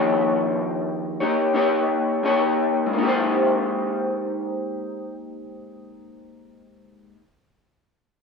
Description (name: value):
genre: indie pop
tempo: 88 BPM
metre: 4/4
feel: swing 60% on 16ths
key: Ab major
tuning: A4 = 442 Hz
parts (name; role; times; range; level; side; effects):
- electric guitar through a small old amp; accompaniment; 0.0-7.2 s; Eb3 to Db5; -21 LUFS; left 2 dB; lush chorus, vibrato effect, plate reverb
room: moderate studio reverb, RT60 0.6 s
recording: rough home demo mix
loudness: -20 LUFS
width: side -4 dB against mid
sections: 0.0-2.9 A section; 2.9-5.7 B section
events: none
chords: 0.0 Eb9; 2.9 Abmaj9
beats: | 0.18 0.86 1.55 2.23 | 2.92 3.60 4.29 4.97